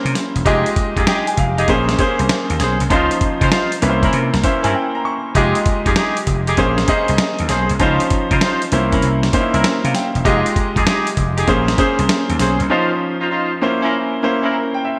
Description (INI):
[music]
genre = R&B, new jack swing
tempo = 98 BPM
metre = 4/4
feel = swing 67% on 16ths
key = F minor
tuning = A4 = 441 Hz
[part]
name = clear concert grand piano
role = accompaniment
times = 0.0-15.0 s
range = F3 to Db6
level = -21 LUFS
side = equal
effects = none
[part]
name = vintage slap bass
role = bass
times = 0.1-12.7 s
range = E1 to Db3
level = -22 LUFS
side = equal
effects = none
[part]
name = dusty soul sampler-style drum kit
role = drums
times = 0.1-12.7 s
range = hi-hat, kick drum, snare drum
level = -22 LUFS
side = equal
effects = none
[part]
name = warm horn section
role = stabs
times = 0.5-14.6 s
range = Db4 to C5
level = -23 LUFS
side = equal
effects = none
[sound]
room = wet lush hall reverb, RT60 2.1 s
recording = bright 1980s-style digital production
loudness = -17 LUFS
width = mono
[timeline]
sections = 0.0-15.0 A section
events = grand piano fill 4.1-5.4, 9.3-10.3; break 4.7-5.4, 12.7-15.0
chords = 0.5 Fm9; 1.7 Bbm9; 2.9 Dbmaj9; 3.8 C7b9; 5.4 Fm9; 6.6 Bbm9; 7.8 Dbmaj9; 8.7 C7b9; 10.3 Fm9; 11.5 Bbm9; 12.7 Dbmaj9; 13.6 C7b9